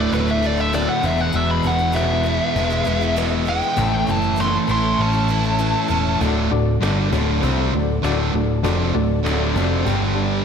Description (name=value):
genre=classic rock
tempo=99 BPM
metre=4/4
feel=straight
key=D major from 6.2 s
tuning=A4 = 440 Hz
part: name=fuzz lead guitar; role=melody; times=0.0-6.2 s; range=B4 to C6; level=-22 LUFS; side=left 1 dB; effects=distortion, slapback echo
part: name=picked swing-style acoustic guitar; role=accompaniment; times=0.0-6.2 s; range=E2 to E4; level=-32 LUFS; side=left 6 dB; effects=slapback echo
part: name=string machine, violas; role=sustained chords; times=0.0-10.4 s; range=D4 to D5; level=-33 LUFS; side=equal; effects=none
part: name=cranked stack guitar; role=riff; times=0.0-10.4 s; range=D2 to E4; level=-23 LUFS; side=right 10 dB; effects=overdrive, slapback echo
part: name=sludgy distorted guitar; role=riff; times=0.0-10.4 s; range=D2 to A4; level=-24 LUFS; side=left 8 dB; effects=overdrive, slapback echo
part: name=hollow-body short-scale picked electric bass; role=bass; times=0.0-10.4 s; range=D1 to C2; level=-23 LUFS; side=equal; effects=none
part: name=cajon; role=drums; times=0.1-10.2 s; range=none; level=-32 LUFS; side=equal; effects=none
part: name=reed electric piano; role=accompaniment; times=6.2-10.4 s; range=D4 to A5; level=-26 LUFS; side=left 7 dB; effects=tremolo
room=wet scoring stage reverb, RT60 1.7 s, digital ambience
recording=big arena sound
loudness=-17 LUFS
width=side -7 dB against mid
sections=0.0-6.2 A section; 6.2-10.4 B section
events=lead electric guitar solo 0.0-6.2; kick and snare drop out 5.0-6.2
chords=0.0 Dadd9; 1.0 E; 3.8 A; 6.2 D; 9.9 G5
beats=0.13 0.73 | 1.34 1.95 2.56 3.17 | 3.78 4.39 5.00 5.60 | 6.21 6.82 7.43 8.04 | 8.64 9.25 9.86